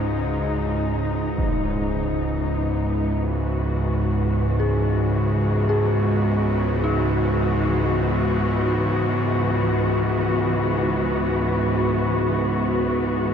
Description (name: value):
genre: dark ambient drone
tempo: 55 BPM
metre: 4/4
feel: straight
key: unclear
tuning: A4 = 440 Hz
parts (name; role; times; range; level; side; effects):
- muted symphonic cello section; sustained chords; 0.0-13.3 s; C#3 to F#4; -25 LUFS; left 2 dB; none
- dark detuned synth bell; arpeggios; 0.0-13.3 s; D#4 to G#4; -31 LUFS; left 3 dB; chorus, phaser, ping-pong delay
- bowed-like drone; drone; 0.0-13.3 s; C#2 to G#2; -22 LUFS; right 1 dB; built-in reverb
- impact; percussion; 1.4-1.6 s; none; -28 LUFS; right 1 dB; low-pass filter on sfx
room: wet huge ambient reverb, RT60 8.3 s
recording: dark, warm production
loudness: -20 LUFS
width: side -7 dB against mid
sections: 0.0-13.3 A section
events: fade-in on cello section 0.0-13.3; fade-in on synth bell 0.0-13.3; fade-in on impacts and reversed cymbals 0.0-13.3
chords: 0.0 C#5; 1.4 E